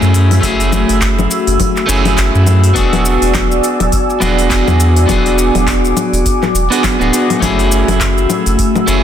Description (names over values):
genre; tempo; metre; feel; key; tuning
sunset chillout; 103 BPM; 4/4; swing 58% on 16ths; F# minor; A4 = 442 Hz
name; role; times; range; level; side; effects
electric guitar at the edge of break-up; accompaniment; 0.0-9.0 s; A3 to G#4; -16 LUFS; moving between left 1 dB and right 5 dB; auto-pan, digital delay
airy breathy pad; sustained chords; 0.0-9.0 s; A3 to E6; -16 LUFS; left 2 dB; chorus
warm sub bass; bass; 0.0-9.0 s; D1 to F#2; -13 LUFS; equal; none
deep house drum kit; drums; 0.0-9.0 s; congas, handclaps, hi-hat, shaker; -18 LUFS; left 4 dB; studio reverb
electronic kick drum; drums; 0.4-8.7 s; none; -19 LUFS; equal; studio reverb
room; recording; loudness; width
light reverb; dense, heavily limited modern master; -10 LUFS; side -10 dB against mid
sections
0.0-9.0 A section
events
none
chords
0.0 F#m9; 2.8 E9; 7.4 F#m9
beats
| 0.43 1.01 1.60 2.18 | 2.76 3.34 3.93 4.51 | 5.09 5.67 6.26 6.84 | 7.42 8.00 8.59